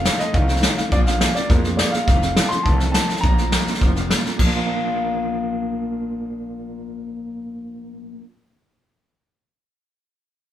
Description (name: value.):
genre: rockabilly.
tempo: 207 BPM.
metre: 4/4.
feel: straight.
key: Bb major.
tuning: A4 = 440 Hz.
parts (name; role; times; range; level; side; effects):
dark upright piano; melody; 0.0-4.1 s; Bb4 to C6; -25 LUFS; equal; none.
picked steel-string acoustic guitar; accompaniment; 0.0-8.3 s; F2 to F4; -26 LUFS; left 3 dB; none.
electric guitar through a small old amp; riff; 0.0-8.2 s; F2 to D4; -28 LUFS; right 4 dB; tremolo.
upright bass; bass; 0.0-8.2 s; F1 to F2; -24 LUFS; equal; none.
vintage brush drum kit; drums; 0.1-4.5 s; crash cymbal, hi-hat, kick drum, snare drum; -19 LUFS; equal; none.
room: light reverb.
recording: band playing live in one room.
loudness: -17 LUFS.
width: side -11 dB against mid.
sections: 0.0-2.1 A section; 2.1-4.4 B section; 4.4-6.7 C section.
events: none.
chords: 0.0 F7; 0.9 Bb; 2.1 F7; 3.2 Bb.